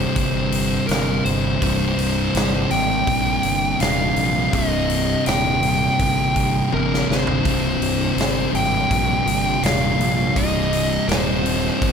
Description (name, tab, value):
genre	stoner and doom metal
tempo	82 BPM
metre	4/4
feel	straight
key	C minor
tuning	A4 = 440 Hz
part	fuzz lead guitar	melody	0.0-11.9 s	Bb4 to G5	-23 LUFS	equal	distortion, digital delay
part	thick fuzz guitar	riff	0.0-11.9 s	C2 to C3	-24 LUFS	left 13 dB	distortion
part	thick fuzz guitar	riff	0.0-11.9 s	C2 to C3	-24 LUFS	right 10 dB	distortion
part	fuzz fingered electric bass	bass	0.0-11.9 s	C1 to Bb1	-25 LUFS	equal	overdrive
part	big rock drum kit	drums	0.2-11.9 s	hi-hat, kick drum, snare drum, toms	-25 LUFS	equal	none
room	light reverb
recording	none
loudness	-17 LUFS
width	side -7 dB against mid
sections	0.0-11.9 A section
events	drum fill 6.7-7.4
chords	0.0 Cm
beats	0.16 0.89 | 1.62 2.35 3.08 3.81 | 4.53 5.26 5.99 6.72 | 7.45 8.17 8.90 9.63 | 10.36 11.09 11.82